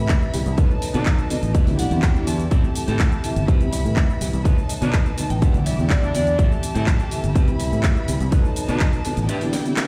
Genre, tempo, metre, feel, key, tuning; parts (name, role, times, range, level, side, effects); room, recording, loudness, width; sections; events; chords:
filtered disco house; 124 BPM; 4/4; straight; A dorian; A4 = 436 Hz
dark grand piano; accompaniment; 0.0-9.9 s; B2 to B4; -30 LUFS; equal; phaser, sidechain pumping
warm chamber violin section; sustained chords; 0.0-9.9 s; D#4 to B5; -35 LUFS; equal; vintage 12-bit sampler grit, sidechain pumping
fingered electric bass; bass; 0.0-9.3 s; E1 to C3; -25 LUFS; equal; tube saturation, sidechain pumping
electronic kick drum; drums; 0.1-8.9 s; -20 LUFS; equal
house drum kit; drums; 0.1-9.9 s; handclaps, hi-hat, shaker, snare drum; -31 LUFS; equal; sidechain pumping on hats, sidechain pumping on perc
semi-hollow electric guitar; riff; 0.2-9.7 s; C4 to A5; -33 LUFS; equal; sidechain pumping
clear horn section; melody; 0.9-1.2, 4.8-8.9 s; D4 to D#4; -33 LUFS; equal; vintage 12-bit sampler grit, sidechain pumping, digital delay
little or no reverb; played on a big sound system in a bare room, large studio reverb; -20 LUFS; mono
0.0-9.9 A section
clean electric guitar fill 1.1-2.5, 4.9-6.4; kick drops out 9.3-9.9; drum fill 9.5-9.9
0.0 Cmaj7; 0.6 B7; 1.5 Em7; 2.5 Am7; 3.5 Cmaj7; 4.5 B7; 5.4 Em7; 6.4 Am7; 7.4 Cmaj7; 8.3 B7; 9.3 Em7